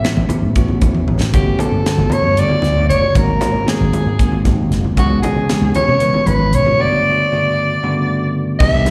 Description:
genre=electric jazz fusion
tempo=231 BPM (eighths)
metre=7/8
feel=straight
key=G lydian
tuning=A4 = 439 Hz
part: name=growling soprano saxophone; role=melody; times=0.0-8.9 s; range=F#4 to E5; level=-20 LUFS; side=equal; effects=none
part: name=bell-like tine electric piano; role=accompaniment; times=0.0-8.9 s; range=G2 to B4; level=-21 LUFS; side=equal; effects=none
part: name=slap bass with an envelope filter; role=bass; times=0.0-8.9 s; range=F#1 to C#3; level=-20 LUFS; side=equal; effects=none
part: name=crisp fusion drum kit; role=drums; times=0.0-8.9 s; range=crash cymbal, hi-hat, kick drum, snare drum, toms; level=-20 LUFS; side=equal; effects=none
part: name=congas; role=percussion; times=0.0-8.9 s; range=none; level=-26 LUFS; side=equal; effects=none
room=light reverb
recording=live gig heard through the venue's PA, recital hall reverb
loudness=-15 LUFS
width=mono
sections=0.0-8.6 A section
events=drum fill 0.9-1.3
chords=0.0 Aadd9; 1.3 Gmaj9#11; 3.2 Ab7; 5.0 C#m7; 6.8 Gmaj9#11

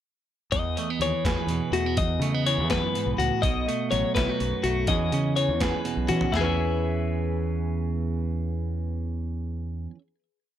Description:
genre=math rock and midwest emo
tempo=83 BPM (dotted quarters)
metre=6/8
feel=straight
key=E major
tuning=A4 = 442 Hz
part: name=clean electric guitar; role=accompaniment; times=0.5-10.1 s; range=E2 to G#4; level=-29 LUFS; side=right 8 dB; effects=none
part: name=twelve-string electric guitar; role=arpeggios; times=0.5-10.0 s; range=E4 to E5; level=-28 LUFS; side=left 7 dB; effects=tape echo
part: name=growling fingered electric bass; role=bass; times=0.5-9.9 s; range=A1 to E3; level=-28 LUFS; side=equal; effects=overdrive
part: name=boom bap sampler-style drum kit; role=drums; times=0.5-6.4 s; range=hi-hat, kick drum, snare drum, toms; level=-30 LUFS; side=equal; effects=overdrive
room=light reverb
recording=none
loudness=-24 LUFS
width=side -10 dB against mid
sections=0.5-6.3 A section; 6.3-9.2 final chord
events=drum fill 6.1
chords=0.5 Emaj7; 3.4 B7; 4.9 E6

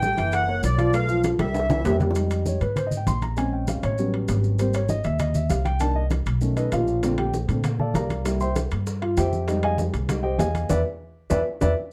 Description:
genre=Afro-Cuban jazz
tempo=196 BPM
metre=4/4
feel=straight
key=F minor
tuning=A4 = 437 Hz
part: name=accordion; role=melody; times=0.0-2.0 s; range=D5 to G5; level=-28 LUFS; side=equal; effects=light tremolo tuning
part: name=dark grand piano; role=accompaniment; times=0.0-11.7 s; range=D3 to C6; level=-28 LUFS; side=equal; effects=none
part: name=upright bass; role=bass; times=0.0-11.7 s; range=F#1 to Bb2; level=-27 LUFS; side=equal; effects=none
part: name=bongos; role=percussion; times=0.0-2.2, 7.0-11.7 s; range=none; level=-38 LUFS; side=equal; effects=none
part: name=congas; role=percussion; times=0.0-11.7 s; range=none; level=-32 LUFS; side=equal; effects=none
part: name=maracas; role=percussion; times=0.0-11.7 s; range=none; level=-45 LUFS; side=equal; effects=none
part: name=timbales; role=percussion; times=0.2-11.7 s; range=none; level=-35 LUFS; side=equal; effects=none
room=moderate club reverb, RT60 0.7 s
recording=none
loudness=-24 LUFS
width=mono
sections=0.0-2.2 A section; 2.2-11.9 B section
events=drum fill 1.4-2.2, 11.2-11.9; grand piano solo 2.2-11.9; band accent 10.7-11.9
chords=0.3 F#7b13; 0.9 Fmaj9#11/B; 1.5 C7; 2.2 Fm9; 3.4 Bbm7; 4.0 A13; 4.6 Abmaj7; 5.8 Cm9; 6.4 B9; 7.0 Bbmaj7; 8.3 C7; 9.5 Fm9; 10.7 E5

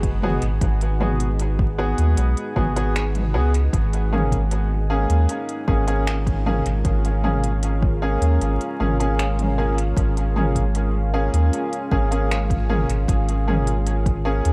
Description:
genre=ambient dub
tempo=77 BPM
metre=4/4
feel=straight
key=unclear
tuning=A4 = 440 Hz
part: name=deep dark ambient pad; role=sustained chords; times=0.0-14.5 s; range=G#3 to F#5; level=-33 LUFS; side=equal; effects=chorus, built-in reverb
part: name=soft dub sub bass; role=bass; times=0.0-14.5 s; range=F#1 to D#2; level=-23 LUFS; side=equal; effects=tube saturation
part: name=electronic kick drum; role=drums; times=0.0-14.2 s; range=none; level=-26 LUFS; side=equal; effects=none
part: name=organic electronic drum kit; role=drums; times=0.0-14.5 s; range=finger snaps, hi-hat, toms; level=-31 LUFS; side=equal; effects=dub echo
part: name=clear upright piano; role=stabs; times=0.2-14.5 s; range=A#3 to G#4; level=-28 LUFS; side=equal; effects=dub echo
room=digital ambience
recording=vinyl crackle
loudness=-21 LUFS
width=mono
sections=0.0-14.5 A section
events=none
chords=0.0 G#m7; 3.7 A#m7/G#

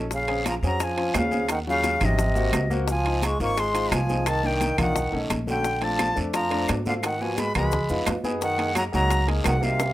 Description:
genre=Afro-Cuban jazz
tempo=174 BPM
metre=4/4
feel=straight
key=Bb minor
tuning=A4 = 440 Hz
part: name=warm grand piano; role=accompaniment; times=0.0-9.8 s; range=Gb3 to Bb4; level=-30 LUFS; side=left 2 dB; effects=none
part: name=upright bass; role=bass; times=0.0-9.9 s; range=Ab1 to Ab2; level=-27 LUFS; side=equal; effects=none
part: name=breathy bright jazz flute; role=melody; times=0.1-9.9 s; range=Eb5 to Db6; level=-27 LUFS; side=left 1 dB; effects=slapback echo
part: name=bright trombone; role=second line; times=0.1-9.9 s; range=C3 to Bb3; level=-28 LUFS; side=right 2 dB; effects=none
part: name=bongos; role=percussion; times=0.1-9.9 s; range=none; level=-32 LUFS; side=left 8 dB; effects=none
part: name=congas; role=percussion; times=0.1-9.9 s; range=none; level=-33 LUFS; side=left 1 dB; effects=none
part: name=guiro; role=percussion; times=0.1-9.9 s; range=none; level=-39 LUFS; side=right 2 dB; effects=none
part: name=maracas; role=percussion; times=0.1-9.9 s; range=none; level=-40 LUFS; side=right 4 dB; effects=none
part: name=timbales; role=percussion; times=0.3-9.9 s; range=none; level=-32 LUFS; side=right 5 dB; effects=none
part: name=claves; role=percussion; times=0.4-9.9 s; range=none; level=-33 LUFS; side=equal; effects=none
room=moderate studio reverb, RT60 0.6 s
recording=rough home demo mix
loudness=-21 LUFS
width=side -15 dB against mid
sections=0.1-9.9 A section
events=none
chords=0.1 Bbm7; 1.5 Ebm7; 2.2 Ab7; 2.9 Dbmaj7; 4.3 Cm7; 5.0 B9; 5.7 Bbmaj9; 7.0 Abm7; 7.7 Db7; 8.4 Gb6

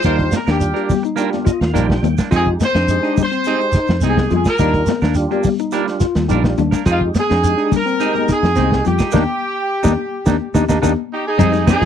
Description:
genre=afrobeat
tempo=106 BPM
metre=4/4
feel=straight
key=unclear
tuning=A4 = 440 Hz
part: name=warm horn section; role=melody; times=0.0-11.9 s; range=F4 to C5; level=-19 LUFS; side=equal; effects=none
part: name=clean electric guitar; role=stabs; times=0.0-11.8 s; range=G3 to Bb4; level=-23 LUFS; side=right 11 dB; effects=none
part: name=fingered electric bass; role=bass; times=0.0-11.9 s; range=Bb1 to F3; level=-18 LUFS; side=right 1 dB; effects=none
part: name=vintage drum kit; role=drums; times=0.0-11.9 s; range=crash cymbal, hi-hat, kick drum, snare drum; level=-19 LUFS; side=right 1 dB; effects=none
part: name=shekere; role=percussion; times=0.0-11.9 s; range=none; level=-23 LUFS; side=right 3 dB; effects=none
part: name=percussive tonewheel organ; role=accompaniment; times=0.1-11.7 s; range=G3 to G5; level=-24 LUFS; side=right 4 dB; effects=slow rotary speaker, overdrive, chorus vibrato
part: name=tine electric piano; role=arpeggios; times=0.1-11.9 s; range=C4 to G4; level=-21 LUFS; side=left 5 dB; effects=medium stereo tremolo
part: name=congas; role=percussion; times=0.3-11.8 s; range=none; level=-23 LUFS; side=left 20 dB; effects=none
part: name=growling trumpet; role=second line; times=11.1-11.9 s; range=Eb4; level=-25 LUFS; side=right 5 dB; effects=none
room=little or no reverb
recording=dry, close 1970s-style studio recording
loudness=-14 LUFS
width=side -9 dB against mid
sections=0.0-11.4 A section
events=tonewheel organ fill 1.2-2.3; band accent 9.1-11.4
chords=0.0 Ebmaj7; 2.3 Fm7; 4.6 Ebmaj7; 6.9 Fm7; 9.1 Ebmaj7

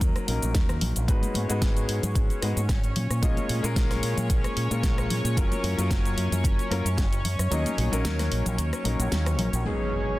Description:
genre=nu-disco, nu disco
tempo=112 BPM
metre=4/4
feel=swing 54% on 16ths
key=unclear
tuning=A4 = 439 Hz
part: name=warm grand piano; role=accompaniment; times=0.0-10.2 s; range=F#3 to D#5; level=-30 LUFS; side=left 2 dB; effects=analog delay
part: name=fingered electric bass with an envelope filter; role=bass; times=0.0-9.6 s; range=F#1 to A#2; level=-27 LUFS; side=equal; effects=none
part: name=electronic kick drum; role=drums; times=0.0-7.1 s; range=none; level=-25 LUFS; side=equal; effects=none
part: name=pop drum kit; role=drums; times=0.0-10.2 s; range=crash cymbal, hi-hat, rim click, shaker, snare drum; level=-33 LUFS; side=equal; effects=low-pass filter on hats, low-pass filter on perc, low-pass filter on snare, low-pass filter on cymbals
part: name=congas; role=percussion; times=0.4-9.5 s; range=none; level=-35 LUFS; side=left 2 dB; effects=none
part: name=lush unison pad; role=sustained chords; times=1.1-10.2 s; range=C#4 to C#5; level=-34 LUFS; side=equal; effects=chorus, sidechain pumping
part: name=impact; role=sound effects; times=9.7-10.2 s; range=none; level=-30 LUFS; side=equal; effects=none
room=light reverb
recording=dense, heavily limited modern master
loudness=-23 LUFS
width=side -17 dB against mid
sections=0.0-9.7 A section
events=kick drops out 7.5-9.7; impact 9.7-10.2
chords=0.0 D#m7; 1.1 G#m7; 3.0 A#m7; 5.4 F#maj7; 7.5 D#m7; 9.7 G#m7

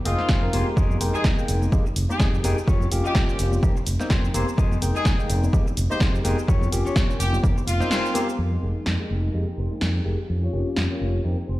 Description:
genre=filtered disco house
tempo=126 BPM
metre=4/4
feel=swing 57% on 16ths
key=F minor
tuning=A4 = 440 Hz
part: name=clean electric guitar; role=riff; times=0.0-11.6 s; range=F4 to Eb5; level=-34 LUFS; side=left 3 dB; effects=sidechain pumping, low-pass filter
part: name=bright horn section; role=melody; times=0.1-8.3 s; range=F4 to C5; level=-30 LUFS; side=equal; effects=sidechain pumping, low-pass filter
part: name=barky tine electric piano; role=accompaniment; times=0.1-11.4 s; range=Ab3 to G5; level=-29 LUFS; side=left 1 dB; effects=phaser, sidechain pumping, low-pass filter
part: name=fingered electric bass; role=bass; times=0.1-11.6 s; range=F1 to F2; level=-24 LUFS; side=equal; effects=sidechain pumping, low-pass filter
part: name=punchy analog drum machine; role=drums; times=0.1-10.9 s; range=hi-hat, shaker, snare drum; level=-30 LUFS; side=equal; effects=overdrive
part: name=egg shaker and congas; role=percussion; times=0.1-8.4 s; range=none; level=-33 LUFS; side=left 4 dB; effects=sidechain pumping on perc, low-pass filter on perc
part: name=electronic kick drum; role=drums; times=0.3-7.5 s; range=none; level=-21 LUFS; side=equal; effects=overdrive
part: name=bright studio violin section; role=sustained chords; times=8.4-11.6 s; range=Ab3 to G5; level=-41 LUFS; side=left 1 dB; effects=sidechain pumping, low-pass filter
room=little or no reverb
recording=played on a big sound system in a bare room, stone room reverb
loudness=-20 LUFS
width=side -17 dB against mid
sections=0.0-8.4 A section; 8.4-11.6 B section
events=filter sweep 0.0-8.4, 8.4-11.6; band accent 7.9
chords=0.0 Abmaj7/F; 0.8 Fm11; 2.7 Eb9/F; 3.6 Fm11; 6.5 Bbm6/F; 7.4 Fm11; 10.3 Bbm6/F

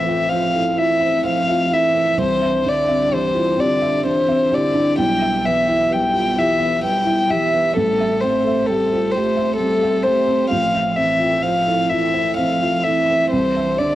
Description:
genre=neoclassical piano and strings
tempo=43 BPM (dotted quarters)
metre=6/8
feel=rubato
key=A minor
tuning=A4 = 440 Hz
part: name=rich violin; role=melody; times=0.0-13.9 s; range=A4 to G5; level=-18 LUFS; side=left 2 dB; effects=cassette tape
part: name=dark cello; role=second line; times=0.0-13.9 s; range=D3 to A3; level=-26 LUFS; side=right 4 dB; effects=cassette tape, analog delay
part: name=felt-muted upright piano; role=accompaniment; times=0.0-13.9 s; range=A1 to E5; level=-23 LUFS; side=right 4 dB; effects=cassette tape
part: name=warbly tape-like pad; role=sustained chords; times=0.0-13.9 s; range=B3 to G5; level=-31 LUFS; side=left 2 dB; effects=none
part: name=marimba with soft mallets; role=arpeggios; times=0.1-13.9 s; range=C4 to G5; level=-26 LUFS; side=left 3 dB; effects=cassette tape
room=moderate spring reverb, RT60 1.7 s, studio reverb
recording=home recording on cassette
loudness=-16 LUFS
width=side -14 dB against mid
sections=0.0-13.9 A section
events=none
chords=0.0 Am7; 2.2 Cadd9; 5.0 Em/B; 7.8 Am7; 13.3 Cadd9

